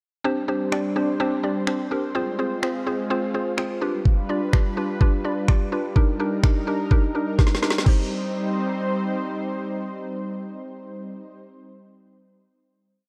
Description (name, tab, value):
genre	dance-pop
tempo	126 BPM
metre	4/4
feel	straight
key	C minor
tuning	A4 = 440 Hz
part	mallet-like synth pluck	accompaniment	0.2-11.4 s	C4 to D5	-27 LUFS	equal	chorus, sidechain pumping
part	lush unison pad	sustained chords	0.2-11.4 s	G3 to C5	-31 LUFS	equal	chorus, sidechain pumping
part	smooth R&B drum kit	drums	0.7-8.0 s	crash cymbal, finger snaps, kick drum, snare drum	-21 LUFS	equal	none
room	light reverb, digital ambience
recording	worn, warbling old tape, cassette tape, warbly pitch drift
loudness	-23 LUFS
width	mono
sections	0.2-7.9 verse; 7.9-11.7 final chord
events	drum fill 7.4-7.9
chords	0.2 Csus2; 2.2 Fm; 3.8 G7; 6.0 Ebmaj7; 7.9 Cm